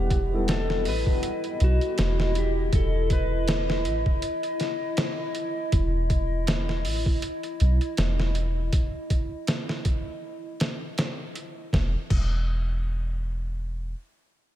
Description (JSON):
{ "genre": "trip hop", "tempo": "80 BPM", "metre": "4/4", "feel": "swing 56% on 16ths", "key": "E harmonic minor", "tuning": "A4 = 443 Hz", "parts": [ { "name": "clean lap steel guitar", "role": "melody", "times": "0.0-5.3 s", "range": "F#4 to B4", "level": "-31 LUFS", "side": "left 3 dB", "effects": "tape echo" }, { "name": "felt-muted upright piano", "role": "accompaniment", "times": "0.0-2.8 s", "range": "G3 to F#5", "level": "-33 LUFS", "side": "left 1 dB", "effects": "tremolo, vintage 12-bit sampler grit, tape echo" }, { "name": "warbly tape-like pad", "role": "sustained chords", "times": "0.1-11.7 s", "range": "E4 to D#5", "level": "-32 LUFS", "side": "equal", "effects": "chorus, built-in reverb" }, { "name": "soft 808-style bass", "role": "bass", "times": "0.0-13.9 s", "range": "E1 to B1", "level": "-25 LUFS", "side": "equal", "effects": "none" }, { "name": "trip hop sampler-style drum kit", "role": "drums", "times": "0.1-12.3 s", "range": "crash cymbal, hi-hat, kick drum, snare drum", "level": "-26 LUFS", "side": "equal", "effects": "none" } ], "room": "light reverb", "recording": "none", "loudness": "-23 LUFS", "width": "side -12 dB against mid", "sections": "0.0-11.7 A section; 11.7-14.6 B section", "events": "none", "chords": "0.0 Emadd9; 11.7 N.C." }